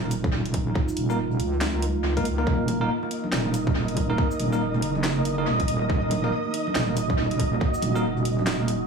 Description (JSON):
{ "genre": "deep dubstep", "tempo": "140 BPM", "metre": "4/4", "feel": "swing 61% on 16ths, half-time", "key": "Eb minor", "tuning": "A4 = 440 Hz", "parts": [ { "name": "deep dark ambient pad", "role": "sustained chords", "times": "0.0-8.9 s", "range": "Eb4 to Bb4", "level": "-31 LUFS", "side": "right 2 dB", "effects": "chorus, built-in reverb" }, { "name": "wobble bass", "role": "bass", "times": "0.0-8.9 s", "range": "Eb1 to Db2", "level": "-26 LUFS", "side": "right 2 dB", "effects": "chorus, tube saturation" }, { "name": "garage drum kit", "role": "drums", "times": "0.1-8.8 s", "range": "handclaps, hi-hat, shaker, snare drum", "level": "-32 LUFS", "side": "equal", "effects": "tape echo" }, { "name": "electronic kick drum", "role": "drums", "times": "0.2-7.7 s", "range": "none", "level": "-25 LUFS", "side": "right 1 dB", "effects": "none" }, { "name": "bell-like tine electric piano", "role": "stabs", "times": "1.1-8.0 s", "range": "Bb3 to Bb4", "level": "-31 LUFS", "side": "left 2 dB", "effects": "fast stereo tremolo, dub echo" }, { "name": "flickering grainy texture", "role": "texture", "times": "3.1-8.9 s", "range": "Eb5", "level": "-30 LUFS", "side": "right 1 dB", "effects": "built-in reverb" }, { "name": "congas", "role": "percussion", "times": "2.7-8.7 s", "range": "none", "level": "-32 LUFS", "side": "right 2 dB", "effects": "dub echo" } ], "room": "light reverb", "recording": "echo-heavy mix, studio reverb", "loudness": "-22 LUFS", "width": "side -5 dB against mid", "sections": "0.0-8.9 A section", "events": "none", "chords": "0.0 Eb5", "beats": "0.33 | 0.75 1.18 1.61 2.04 | 2.47 2.90 3.33 3.75 | 4.18 4.61 5.04 5.47 | 5.90 6.33 6.75 7.18 | 7.61 8.04 8.47" }